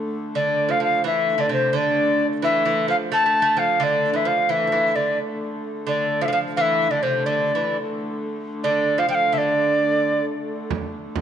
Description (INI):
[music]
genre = medieval dance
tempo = 87 BPM (dotted quarters)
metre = 6/8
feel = straight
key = D minor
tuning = A4 = 439 Hz
[part]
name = dark hurdy-gurdy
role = drone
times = 0.0-11.2 s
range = D3 to A3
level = -29 LUFS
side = equal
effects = stereo widening
[part]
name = alto recorder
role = melody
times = 0.3-10.2 s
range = C5 to A5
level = -20 LUFS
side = left 1 dB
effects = none
[part]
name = lute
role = second line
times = 0.4-10.2 s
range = C3 to A3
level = -26 LUFS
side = right 5 dB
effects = none
[part]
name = frame drum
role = percussion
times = 10.7-11.2 s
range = none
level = -27 LUFS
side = right 6 dB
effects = none
[sound]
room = moderate echo chamber reverb, RT60 1.6 s, small room ambience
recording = 1960s-style stereo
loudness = -19 LUFS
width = side -9 dB against mid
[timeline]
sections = 0.0-10.7 A section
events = none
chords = none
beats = 0.36 | 1.05 1.74 | 2.43 3.12 | 3.81 4.50 | 5.18 5.87 | 6.56 7.25 | 7.94 8.63 | 9.32 10.01 | 10.70